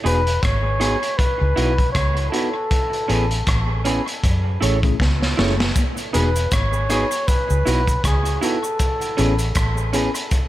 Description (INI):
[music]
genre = lovers rock reggae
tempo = 79 BPM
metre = 4/4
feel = swing 57% on 16ths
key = unclear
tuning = A4 = 440 Hz
[part]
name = mellow tine electric piano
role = accompaniment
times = 0.0-10.1 s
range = A3 to G#4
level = -26 LUFS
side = left 2 dB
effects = auto-pan
[part]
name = electric guitar through a small old amp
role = stabs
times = 0.0-10.1 s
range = C#4 to C#5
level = -27 LUFS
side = right 4 dB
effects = dub echo
[part]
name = warm flugelhorn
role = melody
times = 0.1-9.9 s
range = G#4 to C#5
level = -25 LUFS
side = equal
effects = tube saturation, dub echo
[part]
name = vintage muted fingered electric bass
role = bass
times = 0.1-10.1 s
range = E1 to F#2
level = -21 LUFS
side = equal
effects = none
[part]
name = crunchy breakbeat drum kit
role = drums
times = 0.1-10.5 s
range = hi-hat, kick drum, rim click, snare drum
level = -22 LUFS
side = equal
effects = gated reverb, dub echo
[part]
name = cabasa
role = percussion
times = 5.8-10.5 s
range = none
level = -35 LUFS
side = right 1 dB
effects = none
[sound]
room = light reverb, small room ambience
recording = none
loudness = -17 LUFS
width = side -14 dB against mid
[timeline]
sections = 0.0-10.5 A section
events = drum fill 5.0-5.8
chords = 0.0 Emaj7; 1.2 C#m11; 2.7 Amaj9; 4.2 F#m7; 5.8 Emaj7; 7.3 C#m11; 8.8 Amaj9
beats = 0.43 1.19 1.95 | 2.71 3.47 4.23 4.99 | 5.75 6.51 7.27 8.04 | 8.79 9.56 10.32